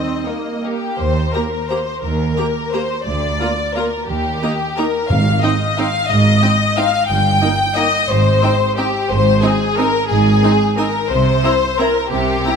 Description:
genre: classical, orchestral ballroom waltz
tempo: 178 BPM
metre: 3/4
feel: uneven beats, rubato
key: Eb major, Ab major from 9.1 s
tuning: A4 = 440 Hz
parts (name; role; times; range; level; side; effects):
- clear studio violin section; melody; 0.0-12.5 s; Eb5 to Bb5; -31 LUFS; left 4 dB; none
- rich studio viola section; accompaniment; 0.0-12.5 s; Bb3 to G4; -23 LUFS; right 3 dB; none
- warm French horn section; sustained chords; 0.0-0.8 s; G3 to Eb4; -30 LUFS; left 2 dB; none
- warm studio cello section; bass; 0.0-12.4 s; D2 to Eb3; -20 LUFS; right 2 dB; none
- warm studio double bass section; bass; 0.0-12.4 s; G1 to Eb2; -22 LUFS; right 4 dB; none
- rich studio violin section; second line; 0.3-12.6 s; Eb4 to G5; -17 LUFS; left 4 dB; none
- timpani; percussion; 5.1-5.6 s; Ab2; -23 LUFS; right 1 dB; none
room: moderate scoring stage reverb, RT60 1.9 s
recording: none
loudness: -14 LUFS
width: side -6 dB against mid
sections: 1.0-12.6 A section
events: none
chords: 0.0 Eb; 3.1 Bb/D; 4.1 Eb; 5.1 Ab; 7.1 Eb/G; 8.1 Abmaj7; 11.1 C7

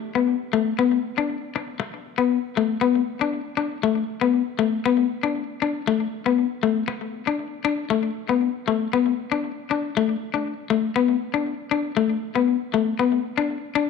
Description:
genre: highlife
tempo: 118 BPM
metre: 4/4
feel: straight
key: unclear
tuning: A4 = 440 Hz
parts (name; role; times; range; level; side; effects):
- electric guitar at the edge of break-up; solo; 0.2-13.9 s; A3 to D4; -21 LUFS; left 8 dB; tape echo
room: moderate echo chamber reverb, RT60 1.6 s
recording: none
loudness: -21 LUFS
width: side -5 dB against mid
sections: 0.0-1.8 A section; 1.8-13.9 B section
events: none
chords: none

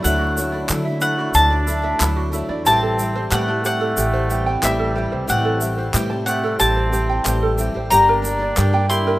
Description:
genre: indie folk with a building arrangement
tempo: 91 BPM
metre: 4/4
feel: straight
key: unclear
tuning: A4 = 440 Hz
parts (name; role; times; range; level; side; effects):
- bowl-back mandolin; melody; 0.0-9.2 s; E5 to C6; -20 LUFS; left 1 dB; none
- picked steel-string acoustic guitar; accompaniment; 0.0-9.2 s; G2 to G4; -28 LUFS; left 3 dB; none
- warm upright piano; accompaniment; 0.0-9.2 s; G1 to E5; -30 LUFS; left 1 dB; none
- dark studio string section; sustained chords; 0.0-9.2 s; C3 to G4; -33 LUFS; equal; none
- ukulele; arpeggios; 0.0-9.2 s; E4 to A5; -24 LUFS; right 4 dB; none
- upright bass; bass; 0.0-9.2 s; G1 to D3; -22 LUFS; equal; none
- egg shaker; percussion; 0.0-9.1 s; none; -27 LUFS; right 2 dB; none
- warm trumpet; second line; 0.1-9.2 s; G3 to E4; -28 LUFS; right 1 dB; none
- group handclap; percussion; 0.7-8.7 s; none; -24 LUFS; left 1 dB; none
room: light reverb, small room reverb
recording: rough home demo mix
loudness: -16 LUFS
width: side -17 dB against mid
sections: 0.0-9.2 A section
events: none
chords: 0.0 Dadd9; 2.7 Am7; 7.9 Gm

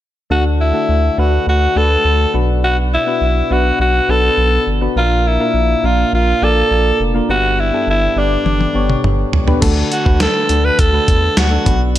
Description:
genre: 1980s-style pop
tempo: 103 BPM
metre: 4/4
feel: straight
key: D major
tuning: A4 = 440 Hz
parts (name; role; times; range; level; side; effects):
- raspy alto saxophone; melody; 0.3-11.8 s; D4 to B4; -16 LUFS; equal; tape echo
- soft electric-piano-like synth keys; accompaniment; 0.3-12.0 s; G2 to D5; -19 LUFS; left 1 dB; chorus
- round analog bass; bass; 0.3-12.0 s; F1 to E2; -16 LUFS; equal; none
- dusty soul sampler-style drum kit; drums; 8.5-12.0 s; crash cymbal, hi-hat, kick drum, snare drum, toms; -16 LUFS; equal; gated reverb
room: light reverb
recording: none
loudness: -12 LUFS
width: side -13 dB against mid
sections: 0.3-9.6 A section; 9.6-12.0 B section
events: drum fill 8.5-9.6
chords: 0.3 D; 2.3 Bm; 5.0 Bb; 7.3 G; 9.6 D

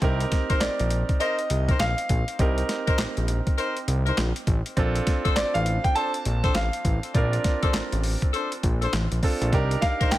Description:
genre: R&B, new jack swing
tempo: 101 BPM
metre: 4/4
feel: swing 62% on 16ths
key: C dorian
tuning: A4 = 440 Hz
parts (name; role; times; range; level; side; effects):
- bright concert grand piano; accompaniment; 0.0-10.2 s; C4 to Bb4; -30 LUFS; right 4 dB; none
- fat analog bass; bass; 0.0-10.2 s; A1 to C2; -25 LUFS; equal; none
- boom bap sampler-style drum kit; drums; 0.0-10.2 s; handclaps, hi-hat, kick drum, snare drum; -25 LUFS; equal; none
- warm horn section; stabs; 0.5-10.1 s; D4 to C5; -31 LUFS; left 3 dB; none
- warm concert grand piano; melody; 0.6-10.2 s; D5 to A5; -28 LUFS; equal; none
room: small room ambience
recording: none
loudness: -22 LUFS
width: side -15 dB against mid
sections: 0.0-10.2 A section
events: none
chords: 0.0 Cm7; 4.8 Bbmaj9; 9.5 Cm7

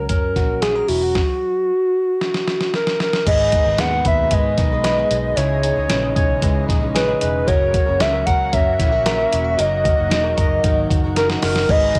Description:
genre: jangly indie pop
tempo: 114 BPM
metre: 4/4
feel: straight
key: unclear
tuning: A4 = 439 Hz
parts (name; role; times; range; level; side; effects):
- hollow clarinet-like synth lead; melody; 0.0-12.0 s; F#4 to F#5; -21 LUFS; equal; chorus, cassette tape
- direct-recorded clean electric guitar; arpeggios; 0.0-12.0 s; G#2 to B4; -28 LUFS; equal; cassette tape
- vintage muted fingered electric bass; bass; 0.0-11.9 s; E1 to G#2; -27 LUFS; equal; none
- dusty soul sampler-style drum kit; drums; 0.1-12.0 s; crash cymbal, hi-hat, kick drum, snare drum; -23 LUFS; equal; none
- picked twelve-string acoustic guitar; accompaniment; 3.3-12.0 s; G#2 to B4; -32 LUFS; equal; cassette tape
- warm upright piano; accompaniment; 3.3-12.0 s; C#4 to C#5; -35 LUFS; equal; none
- lush unison pad; sustained chords; 4.0-12.0 s; B2 to D#5; -32 LUFS; equal; chorus, phaser, cassette tape
room: moderate booth ambience, RT60 0.2 s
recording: home recording on cassette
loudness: -18 LUFS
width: mono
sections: 0.0-3.3 A section; 3.3-12.0 B section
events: drum fill 2.2-3.3, 11.2-11.7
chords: 0.0 F#; 1.2 N.C.; 3.3 G#m; 5.4 C#madd9; 7.5 F#; 9.6 D#m

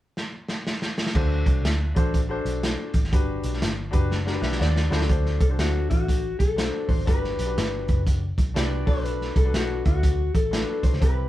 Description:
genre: uptempo 1960s-style soul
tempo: 122 BPM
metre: 4/4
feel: swing 63% on 8ths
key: D mixolydian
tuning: A4 = 440 Hz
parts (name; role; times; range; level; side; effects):
- crunchy breakbeat drum kit; drums; 0.2-11.2 s; crash cymbal, hi-hat, kick drum, snare drum; -24 LUFS; equal; none
- clear concert grand piano; accompaniment; 1.1-11.3 s; C4 to B5; -31 LUFS; left 3 dB; none
- vintage muted picked electric bass; bass; 1.1-11.3 s; F#1 to Eb2; -26 LUFS; equal; none
- electric guitar through a small old amp; melody; 4.6-11.3 s; F#4 to D5; -29 LUFS; left 3 dB; none
room: light reverb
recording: band playing live in one room, cassette tape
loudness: -21 LUFS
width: side -14 dB against mid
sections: 0.0-1.2 A section; 1.2-5.1 B section; 5.1-11.3 C section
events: drum fill 0.2-1.2, 4.1-5.1; grand piano fill 4.1-5.1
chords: 0.0 N.C.; 1.2 D7; 3.1 Gmaj7; 4.9 D7; 7.1 Gmaj7; 8.8 Bm7

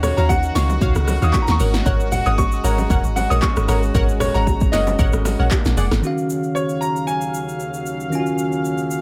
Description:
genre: amapiano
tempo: 115 BPM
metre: 4/4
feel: swing 55% on 16ths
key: Eb minor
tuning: A4 = 440 Hz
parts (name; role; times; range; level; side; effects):
- clear concert grand piano; melody; 0.0-7.8 s; Db5 to Eb6; -26 LUFS; equal; tape echo
- clear brass ensemble; sustained chords; 0.0-9.0 s; Eb2 to F5; -30 LUFS; equal; sidechain pumping
- punchy chord stab; stabs; 0.0-5.9 s; Gb4 to Gb5; -30 LUFS; equal; chorus, phaser, tape echo
- deep log drum bass; bass; 0.0-6.0 s; F1 to Eb2; -22 LUFS; equal; none
- deep house drum kit; drums; 0.0-9.0 s; handclaps, hi-hat, kick drum, rim click, shaker, snare drum; -24 LUFS; equal; overdrive
- bongos and congas; percussion; 0.0-5.6 s; none; -30 LUFS; equal; none
- bell-like tine electric piano; accompaniment; 6.0-9.0 s; Eb3 to Ab5; -24 LUFS; equal; none
room: little or no reverb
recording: none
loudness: -19 LUFS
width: mono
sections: 0.0-6.0 A section; 6.0-9.0 B section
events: drop 0.0-6.0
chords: 0.0 Ebm9; 1.6 Ab9sus4; 5.5 Bb7b13; 6.0 Ebm9

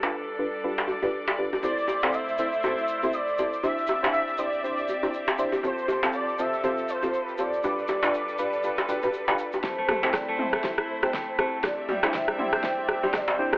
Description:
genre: afro house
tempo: 120 BPM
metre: 4/4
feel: swing 57% on 16ths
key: A minor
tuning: A4 = 441 Hz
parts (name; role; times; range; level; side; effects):
- clear studio string section; sustained chords; 0.0-13.6 s; F3 to B5; -33 LUFS; equal; sidechain pumping, low-pass filter
- deep mellow chord stab; stabs; 0.0-13.5 s; C4 to C5; -31 LUFS; equal; chorus, sidechain pumping, dub echo
- djembe; percussion; 0.0-13.6 s; none; -28 LUFS; equal; none
- expressive portamento lead; melody; 1.6-13.6 s; C5 to G5; -29 LUFS; equal; ensemble chorus, dub echo
- tube shaker; percussion; 1.6-9.6 s; none; -49 LUFS; equal; none
- kora; arpeggios; 9.6-13.6 s; G3 to C5; -30 LUFS; equal; sidechain pumping, low-pass filter, dub echo
- deep house drum kit; drums; 9.6-13.6 s; rim click, snare drum, toms; -28 LUFS; equal; overdrive, studio reverb
- electronic kick drum; drums; 9.6-13.3 s; none; -35 LUFS; equal; high-pass filter on kick, studio reverb
room: moderate plate reverb, RT60 2.3 s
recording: telephone sound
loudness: -24 LUFS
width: side -22 dB against mid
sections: 0.0-9.6 A section; 9.6-13.6 B section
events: filter sweep on synth stab 0.0-9.6; build-up 9.6-13.6; drum fill 9.6-13.6; filter sweep on kora 9.6-13.6; filter sweep on analog synth lead 9.6-13.6; filter sweep 9.6-13.6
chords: 0.0 G7; 1.6 Am; 3.6 Cadd9; 5.6 F; 7.6 G7; 9.6 Am; 11.6 Cadd9

